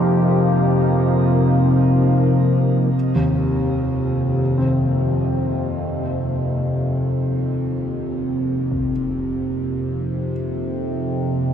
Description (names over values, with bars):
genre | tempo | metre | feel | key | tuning
dark ambient drone | free time | none | none | F minor | A4 = 440 Hz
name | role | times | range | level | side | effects
deep dark ambient pad | sustained chords | 0.0-11.5 s | F3 to Ab4 | -24 LUFS | equal | chorus, built-in reverb, shimmer reverb
overtone-sweeping drone | drone | 0.0-11.5 s | F2 to C3 | -19 LUFS | equal | chorus, built-in reverb
dark concert grand piano | arpeggios | 3.2-11.5 s | Eb2 to C4 | -27 LUFS | equal | ping-pong delay
impact | percussion | 8.7-8.9 s | none | -34 LUFS | equal | low-pass filter on sfx
room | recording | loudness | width
moderate huge ambient reverb, RT60 7.8 s | none | -17 LUFS | side -8 dB against mid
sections
0.0-2.9 A section; 2.9-11.5 B section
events
fade-in on impacts and reversed cymbals 2.9-11.5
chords
0.0 F5; 2.9 Fm